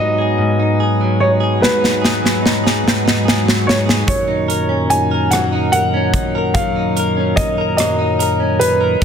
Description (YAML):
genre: six-eight pop ballad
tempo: 49 BPM (dotted quarters)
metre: 6/8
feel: straight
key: F# major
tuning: A4 = 439 Hz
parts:
  - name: warm baby grand piano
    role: melody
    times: 0.0-9.0 s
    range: B4 to G#5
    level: -19 LUFS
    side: equal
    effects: none
  - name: direct-recorded clean electric guitar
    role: accompaniment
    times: 0.0-9.0 s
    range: G#2 to A#4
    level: -18 LUFS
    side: left 1 dB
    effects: double-tracked left and right
  - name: overdriven tonewheel organ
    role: sustained chords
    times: 0.0-9.0 s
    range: F#2 to B3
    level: -20 LUFS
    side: equal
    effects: slow rotary speaker
  - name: modern studio drum kit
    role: drums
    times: 1.6-9.0 s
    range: hi-hat, kick drum, rim click, snare drum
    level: -17 LUFS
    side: right 1 dB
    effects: soft clipping on kick
room: light reverb, small room ambience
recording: dense, heavily limited modern master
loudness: -13 LUFS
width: side -7 dB against mid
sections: 0.0-9.0 A section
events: drum fill 1.6-4.1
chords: 0.0 G#m7; 4.1 F#6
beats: 0.38 | 1.61 2.85 | 4.08 5.31 | 6.54 7.78 | 9.01